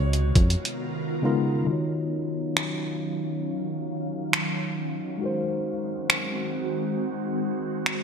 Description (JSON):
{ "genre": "contemporary R&B", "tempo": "68 BPM", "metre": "4/4", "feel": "straight", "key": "Eb dorian", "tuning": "A4 = 440 Hz", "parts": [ { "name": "warm baby grand piano", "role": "melody", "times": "0.0-1.2 s", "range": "Db5", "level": "-39 LUFS", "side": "equal", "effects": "ping-pong delay" }, { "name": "ethereal airy pad", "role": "sustained chords", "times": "0.0-8.0 s", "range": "Eb3 to F5", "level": "-30 LUFS", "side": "right 1 dB", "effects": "ensemble chorus, built-in reverb, low-pass filter" }, { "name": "solid FM bass", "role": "bass", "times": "0.0-0.6 s", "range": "Db2 to F2", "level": "-22 LUFS", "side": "equal", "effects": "none" }, { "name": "detuned 8-bit digital drum machine", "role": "drums", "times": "0.1-8.0 s", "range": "finger snaps, hi-hat, kick drum", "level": "-24 LUFS", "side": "equal", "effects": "gated reverb" }, { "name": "tine electric piano", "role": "accompaniment", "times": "1.2-8.0 s", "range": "Db3 to Db5", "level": "-29 LUFS", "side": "left 2 dB", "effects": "medium stereo tremolo, low-pass filter" } ], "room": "moderate plate reverb, RT60 2.7 s", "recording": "bright 1980s-style digital production", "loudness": "-24 LUFS", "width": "side -7 dB against mid", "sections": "0.0-1.7 A section; 1.7-8.0 B section", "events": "break 0.8-1.7; filter sweep 1.7-8.0", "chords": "0.0 Db13; 1.7 Ebm9; 5.2 Ab7" }